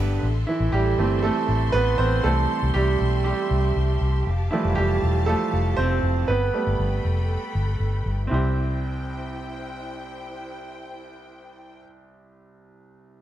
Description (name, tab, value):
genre	pop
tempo	119 BPM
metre	4/4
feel	straight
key	C major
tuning	A4 = 439 Hz
part	bright grand piano	accompaniment	0.0-13.2 s	C2 to C5	-25 LUFS	right 4 dB	none
part	warm studio string section	sustained chords	0.0-11.8 s	B2 to C6	-35 LUFS	left 1 dB	none
part	vintage muted fingered electric bass	bass	0.0-11.8 s	E1 to C2	-23 LUFS	left 1 dB	none
room	light reverb, small room ambience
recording	none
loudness	-20 LUFS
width	side -12 dB against mid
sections	0.2-8.3 A section; 8.3-12.4 B section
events	grand piano solo 0.2-8.3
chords	0.2 Am; 2.2 C; 4.3 Fadd9; 6.3 Gadd9; 8.3 C